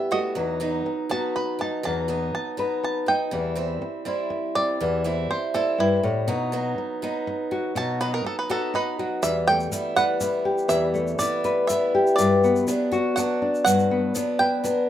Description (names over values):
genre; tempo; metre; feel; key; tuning
acoustic folk duo or small band; 122 BPM; 3/4; straight; E minor from 9.2 s; A4 = 441 Hz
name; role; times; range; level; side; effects
bluegrass banjo; melody; 0.0-14.9 s; D#4 to A5; -26 LUFS; right 2 dB; plate reverb
nylon-string guitar; accompaniment; 0.0-14.9 s; E2 to B4; -24 LUFS; left 3 dB; plate reverb
picked old ladder-braced acoustic guitar; arpeggios; 0.0-14.9 s; F#3 to E4; -28 LUFS; right 3 dB; plate reverb
egg shaker; percussion; 9.2-14.8 s; none; -34 LUFS; left 2 dB; none
room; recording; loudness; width
wet studio reverb, RT60 0.6 s; rough home demo mix; -21 LUFS; side -11 dB against mid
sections
0.0-9.2 A section; 9.2-14.9 B section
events
five-string banjo solo 0.0-9.2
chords
0.4 B/E; 3.3 C/E; 6.3 B; 9.2 Em; 12.2 Gmaj7